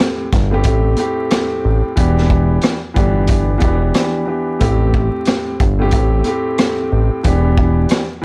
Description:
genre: hip hop, boom-bap hip-hop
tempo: 91 BPM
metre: 4/4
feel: swing 61% on 16ths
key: A minor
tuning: A4 = 440 Hz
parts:
  - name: dark baby grand piano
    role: accompaniment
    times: 0.0-8.2 s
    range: A2 to G4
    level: -21 LUFS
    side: equal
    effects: cassette tape, high-pass filter, low-pass filter
  - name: raw garage drum kit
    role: drums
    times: 0.0-8.1 s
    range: hi-hat, kick drum, rim click, snare drum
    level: -20 LUFS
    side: equal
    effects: none
  - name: fat analog bass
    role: bass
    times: 0.3-7.9 s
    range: E1 to A1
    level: -17 LUFS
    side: equal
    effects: none
room: small room ambience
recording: transformer saturation, vinyl crackle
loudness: -16 LUFS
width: mono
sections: 0.0-8.2 A section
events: none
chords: 0.0 Am7; 2.0 Em7; 4.6 Am7; 7.2 Em7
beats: 0.65 1.31 | 1.97 2.63 3.29 3.95 | 4.61 5.27 5.93 6.59 | 7.25 7.91

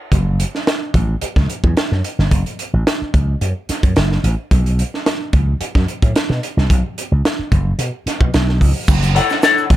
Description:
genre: funk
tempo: 110 BPM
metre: 4/4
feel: straight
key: F# minor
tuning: A4 = 442 Hz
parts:
  - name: slap bass with an envelope filter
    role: bass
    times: 0.1-9.8 s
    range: F#1 to B2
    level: -16 LUFS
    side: equal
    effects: none
  - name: crisp fusion drum kit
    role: drums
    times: 0.1-9.8 s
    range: crash cymbal, hi-hat, kick drum, snare drum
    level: -17 LUFS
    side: right 1 dB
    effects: none
  - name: egg shaker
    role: percussion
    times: 8.9-9.7 s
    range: none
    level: -36 LUFS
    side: left 3 dB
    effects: none
  - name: semi-hollow electric guitar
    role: accompaniment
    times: 9.2-9.7 s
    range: E4 to F#5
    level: -14 LUFS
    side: left 7 dB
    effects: wah, spring reverb
room: little or no reverb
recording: none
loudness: -14 LUFS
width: side -14 dB against mid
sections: 0.1-8.9 A section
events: none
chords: 0.1 F#m; 4.5 Bsus2; 8.9 F#m7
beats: | 0.12 0.67 1.22 1.77 | 2.32 2.87 3.41 3.96 | 4.51 5.06 5.61 6.15 | 6.70 7.25 7.79 8.34 | 8.89 9.43

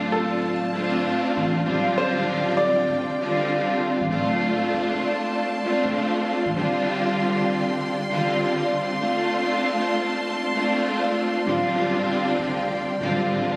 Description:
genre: hip hop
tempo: 98 BPM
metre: 4/4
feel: swing 62% on 16ths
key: D minor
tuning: A4 = 440 Hz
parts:
  - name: clear upright piano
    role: melody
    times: 0.0-4.1 s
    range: A4 to D5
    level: -29 LUFS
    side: equal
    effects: digital delay
  - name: warm symphonic string section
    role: accompaniment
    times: 0.0-13.6 s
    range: D3 to F4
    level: -25 LUFS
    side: equal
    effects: cassette tape
  - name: warm studio string section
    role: sustained chords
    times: 0.0-13.6 s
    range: F4 to C6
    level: -32 LUFS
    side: equal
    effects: none
  - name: soft dub sub bass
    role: bass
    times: 0.0-6.5, 11.5-13.4 s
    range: D1 to A1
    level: -34 LUFS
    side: equal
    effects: none
room: light reverb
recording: recorded on a phone in the room, club reverb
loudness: -23 LUFS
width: mono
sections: 0.0-4.1 A section; 4.1-13.6 B section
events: none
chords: 0.0 Dm7; 1.7 G7sus4/D; 4.1 Dm7; 6.6 G7sus4/D; 9.0 Dm7; 11.5 G7sus4/D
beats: 0.44 1.05 | 1.66 2.28 2.89 3.50 | 4.11 4.73 5.34 5.95 | 6.56 7.17 7.79 8.40 | 9.01 9.62 10.24 10.85 | 11.46 12.07 12.69 13.30

